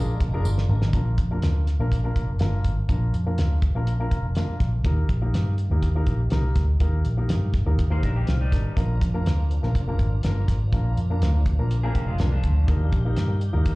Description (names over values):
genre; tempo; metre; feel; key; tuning
uptempo 1960s-style soul; 123 BPM; 4/4; straight; Bb mixolydian; A4 = 440 Hz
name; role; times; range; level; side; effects
warm upright piano; accompaniment; 0.0-13.7 s; Bb3 to D5; -32 LUFS; left 1 dB; slapback echo
tonewheel organ; sustained chords; 0.0-0.9, 8.8-13.8 s; F3 to G4; -39 LUFS; right 3 dB; slow rotary speaker, chorus vibrato
vintage muted fingered electric bass; bass; 0.0-13.8 s; F1 to G2; -22 LUFS; equal; none
congas; percussion; 0.1-0.8 s; none; -37 LUFS; right 4 dB; none
cloth-damped thuddy drum kit; drums; 0.2-13.8 s; hi-hat, kick drum, snare drum; -25 LUFS; equal; vintage 12-bit sampler grit
tambourine; percussion; 0.5-0.6 s; none; -46 LUFS; right 4 dB; none
electric guitar through a small old amp; riff; 7.9-8.8, 11.8-13.0 s; F3 to C5; -36 LUFS; left 2 dB; tremolo, slapback echo
room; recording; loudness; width
small room ambience; live gig heard through the venue's PA, cassette tape, club reverb; -20 LUFS; side -22 dB against mid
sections
0.9-13.8 A section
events
drum fill 0.4-0.9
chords
0.0 Bb7; 4.8 Eb; 8.8 Bb; 12.7 Eb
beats
0.45 | 0.94 1.42 1.91 2.40 | 2.89 3.38 3.87 4.36 | 4.85 5.34 5.83 6.32 | 6.81 7.30 7.79 8.28 | 8.77 9.26 9.75 10.24 | 10.73 11.22 11.71 12.20 | 12.68 13.17 13.66